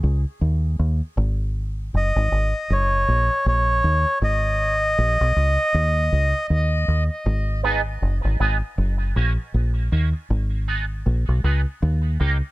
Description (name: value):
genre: dub reggae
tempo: 79 BPM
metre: 4/4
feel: swing 59% on 16ths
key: G# minor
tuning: A4 = 439 Hz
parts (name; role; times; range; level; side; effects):
- deep dub fingered electric bass; bass; 0.0-12.4 s; F#1 to D#2; -20 LUFS; equal; none
- melodica; melody; 2.0-6.5 s; C#5 to D#5; -22 LUFS; equal; tape echo
- electric guitar with an envelope filter; accompaniment; 7.6-12.4 s; A#3 to G#4; -27 LUFS; right 5 dB; analog chorus, high-pass filter, tape echo
room: light reverb, small room ambience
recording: none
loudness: -19 LUFS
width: side -19 dB against mid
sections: 0.0-12.5 A section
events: break 0.0-7.3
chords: 0.0 C#sus2; 1.2 G#5; 2.7 F#; 4.2 G#5; 5.7 C#sus2; 7.3 G#m; 8.8 F#; 10.3 G#m; 11.8 D#